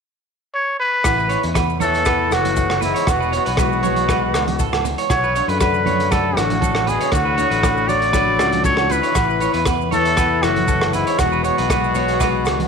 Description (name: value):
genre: highlife guitar band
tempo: 118 BPM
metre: 4/4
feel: straight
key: A major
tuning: A4 = 440 Hz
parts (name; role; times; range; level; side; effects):
- trumpet with straight mute; melody; 0.5-12.7 s; E4 to D5; -20 LUFS; equal; none
- crunchy breakbeat drum kit; drums; 1.0-12.7 s; hi-hat, kick drum, rim click; -23 LUFS; equal; none
- fingerpicked plugged-in steel-string acoustic guitar; accompaniment; 1.1-12.7 s; E2 to F#4; -26 LUFS; left 13 dB; none
- fingered electric bass; bass; 1.1-12.7 s; E1 to F#2; -24 LUFS; equal; none
- agogo bells; percussion; 1.1-12.6 s; none; -26 LUFS; right 15 dB; none
- maracas; percussion; 1.1-12.6 s; none; -35 LUFS; left 17 dB; none
- electric guitar at the edge of break-up; arpeggios; 1.2-12.4 s; A4 to C#5; -24 LUFS; right 10 dB; tape echo
- growling tenor saxophone; second line; 1.8-12.7 s; G#2 to F#3; -25 LUFS; left 12 dB; none
- congas; percussion; 1.8-12.7 s; none; -29 LUFS; right 14 dB; none
room: light reverb, studio reverb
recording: 1960s-style stereo with parts hard left and right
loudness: -15 LUFS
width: side -6 dB against mid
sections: 0.0-1.0 A section; 1.0-12.7 B section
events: none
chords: 0.0 N.C.; 1.0 Asus2; 3.1 Eadd9; 5.1 Bm7; 9.2 Asus2; 11.2 Eadd9